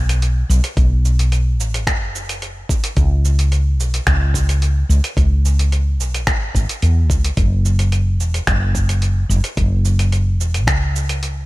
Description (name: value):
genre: sunset chillout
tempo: 109 BPM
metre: 4/4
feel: straight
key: F# minor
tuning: A4 = 440 Hz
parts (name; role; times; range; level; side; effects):
- woody fretless electric bass; bass; 0.0-11.5 s; E1 to E2; -15 LUFS; equal; none
- dusty soul sampler-style drum kit; drums; 0.1-11.3 s; cabasa, finger snaps, hi-hat; -24 LUFS; right 1 dB; overdrive
- electronic kick drum; drums; 0.8-10.8 s; none; -19 LUFS; equal; overdrive
room: little or no reverb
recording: none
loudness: -14 LUFS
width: side -19 dB against mid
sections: 0.0-11.5 A section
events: none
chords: none